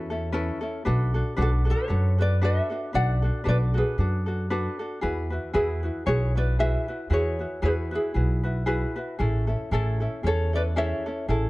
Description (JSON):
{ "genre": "Hawaiian", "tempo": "115 BPM", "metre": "4/4", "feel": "swing 56% on 8ths", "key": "A major", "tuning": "A4 = 440 Hz", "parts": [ { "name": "ukulele", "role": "melody", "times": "0.0-11.5 s", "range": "E4 to F#5", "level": "-28 LUFS", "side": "equal", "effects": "none" }, { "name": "ukulele", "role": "accompaniment", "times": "0.0-11.5 s", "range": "C#4 to B4", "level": "-30 LUFS", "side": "left 1 dB", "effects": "none" }, { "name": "upright bass", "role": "bass", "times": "0.0-11.5 s", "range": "A1 to F#2", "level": "-24 LUFS", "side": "equal", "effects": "none" } ], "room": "light reverb, small room ambience", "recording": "dark, warm production", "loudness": "-23 LUFS", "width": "side -20 dB against mid", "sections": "0.0-11.5 A section", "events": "none", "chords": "0.0 Aadd9; 0.9 Bm7; 5.0 Eadd9; 9.2 Amaj7" }